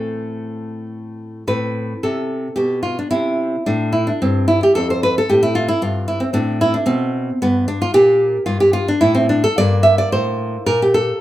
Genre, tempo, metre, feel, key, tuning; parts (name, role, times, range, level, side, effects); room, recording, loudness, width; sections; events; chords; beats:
classical, baroque-style dance for nylon-string guitar; 111 BPM; 3/4; uneven beats, rubato; A minor; A4 = 443 Hz
nylon-string guitar; solo; 0.0-11.2 s; F2 to E5; -15 LUFS; equal
moderate large studio reverb, RT60 0.8 s; band playing live in one room; -15 LUFS; side -14 dB against mid
0.0-1.5 A section; 1.5-11.2 B section
0.0 Am; 4.8 F; 6.3 Gadd11; 7.9 Gmadd9
0.29 0.88 | 1.47 2.04 2.58 | 3.12 3.66 4.21 | 4.75 5.28 5.80 | 6.33 6.87 7.41 | 7.94 8.47 9.01 | 9.56 10.10 10.65